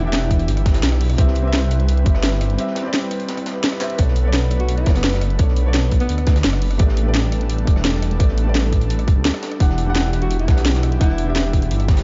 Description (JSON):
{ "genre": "liquid drum and bass", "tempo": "171 BPM", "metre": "4/4", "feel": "straight", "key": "unclear", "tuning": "A4 = 442 Hz", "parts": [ { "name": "warm alto saxophone", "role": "melody", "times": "0.0, 4.6-6.4, 10.2-11.3 s", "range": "B3 to F#4", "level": "-32 LUFS", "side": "equal", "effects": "delay" }, { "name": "felt-muted upright piano", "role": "accompaniment", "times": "0.0-12.0 s", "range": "E3 to F#5", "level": "-29 LUFS", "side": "equal", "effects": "delay" }, { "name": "airy breathy pad", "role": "sustained chords", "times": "0.0-12.0 s", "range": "G3 to B4", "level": "-31 LUFS", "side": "equal", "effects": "chorus, vintage 12-bit sampler grit, sidechain pumping" }, { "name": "swelling detuned saw bass", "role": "bass", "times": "0.0-12.0 s", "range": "E1 to D2", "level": "-21 LUFS", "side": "equal", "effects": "none" }, { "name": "crunchy breakbeat drum kit", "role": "drums", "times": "0.1-12.0 s", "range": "hi-hat, snare drum", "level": "-36 LUFS", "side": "equal", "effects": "high-pass filter on hats, small room ambience, high-pass filter on snare, high-pass filter on room" }, { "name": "garage drum kit", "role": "drums", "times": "0.1-12.0 s", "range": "handclaps, hi-hat, rim click, snare drum", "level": "-25 LUFS", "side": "equal", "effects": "overdrive, small room ambience" }, { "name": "electronic kick drum", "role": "drums", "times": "0.3-12.0 s", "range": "none", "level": "-18 LUFS", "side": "equal", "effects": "overdrive, small room ambience" } ], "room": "little or no reverb", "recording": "dark, warm production, nothing above 7.6 kHz", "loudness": "-18 LUFS", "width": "mono", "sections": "0.0-12.0 A section", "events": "break 2.6-4.0; drum fill 3.8", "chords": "0.0 Em9; 1.2 Cmaj7; 4.0 Bm9; 6.8 A9sus4; 9.4 Em9", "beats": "0.13 0.48 0.83 | 1.18 1.53 1.88 2.23 | 2.58 2.94 3.29 3.64 | 3.99 4.34 4.69 5.04 | 5.39 5.74 6.09 6.45 | 6.80 7.15 7.50 7.85 | 8.20 8.55 8.90 9.25 | 9.60 9.95 10.30 10.66 | 11.01 11.36 11.71" }